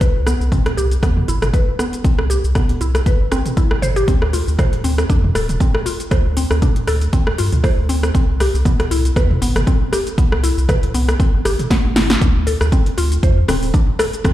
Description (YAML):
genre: afro house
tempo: 118 BPM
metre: 4/4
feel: swing 55% on 16ths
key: D dorian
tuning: A4 = 440 Hz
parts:
  - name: mallet-like synth pluck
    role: arpeggios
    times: 0.0-14.3 s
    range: B3 to C5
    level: -23 LUFS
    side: left 1 dB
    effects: chorus, sidechain pumping, dub echo
  - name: warm sub bass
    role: bass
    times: 0.0-14.3 s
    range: D1 to G2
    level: -18 LUFS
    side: equal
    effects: tube saturation, sidechain pumping
  - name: deep house drum kit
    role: drums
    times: 0.0-14.3 s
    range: hi-hat, rim click, shaker, snare drum, toms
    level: -21 LUFS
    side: right 1 dB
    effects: overdrive
  - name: electronic kick drum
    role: drums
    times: 0.0-14.3 s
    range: none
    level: -16 LUFS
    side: equal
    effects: overdrive
room: light reverb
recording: played on a big sound system in a bare room, large studio reverb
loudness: -14 LUFS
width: side -14 dB against mid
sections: 0.0-12.2 A section; 12.2-14.3 B section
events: drum fill 11.7-12.2; drop 12.2-14.3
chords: 0.0 Cmaj7; 4.1 Dm7; 8.1 Cmaj7; 12.2 Dm7